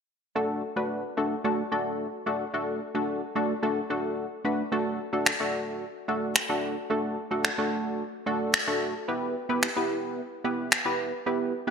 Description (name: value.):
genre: dance-pop.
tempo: 110 BPM.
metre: 4/4.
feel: straight.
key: D major.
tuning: A4 = 440 Hz.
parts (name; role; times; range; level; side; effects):
funky polysynth comp; accompaniment; 0.4-11.7 s; A3 to B4; -27 LUFS; equal; chorus.
electronic finger snaps; drums; 5.3-10.8 s; none; -25 LUFS; equal; gated reverb.
room: wet plate reverb, RT60 2.1 s.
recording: bright 1980s-style digital production.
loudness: -26 LUFS.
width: side -6 dB against mid.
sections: 0.4-4.7 A section; 4.7-11.7 B section.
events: none.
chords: 0.4 D; 9.1 Em.